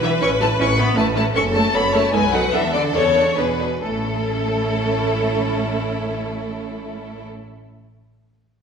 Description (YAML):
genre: quick classical-period movement for string orchestra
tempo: 129-160 BPM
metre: 3/4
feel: straight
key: A major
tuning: A4 = 442 Hz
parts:
  - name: rich chamber violin section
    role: melody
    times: 0.0-7.3 s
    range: A4 to C#6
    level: -22 LUFS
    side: left 4 dB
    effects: none
  - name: rich studio violin section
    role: second line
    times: 0.0-7.3 s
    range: E4 to C#5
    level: -24 LUFS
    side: left 1 dB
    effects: none
  - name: rich studio viola section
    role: accompaniment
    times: 0.0-7.2 s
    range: A3 to A4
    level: -25 LUFS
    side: right 3 dB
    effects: none
  - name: clear chamber double bass section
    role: bass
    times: 0.0-7.2 s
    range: F#1 to E2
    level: -25 LUFS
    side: right 1 dB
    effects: none
  - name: warm studio cello section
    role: bass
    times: 0.0-7.3 s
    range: B2 to C#4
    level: -26 LUFS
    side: right 2 dB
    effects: none
room: wet scoring stage reverb, RT60 1.5 s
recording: minimal, uncompressed stereo recording, lossy compression artefacts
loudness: -17 LUFS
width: side -6 dB against mid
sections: 0.0-3.8 A section; 3.8-6.5 B section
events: slowing down 0.8-3.8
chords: 0.2 A; 1.4 F#m; 2.1 B7; 2.5 E7sus4; 3.4 E7; 3.8 A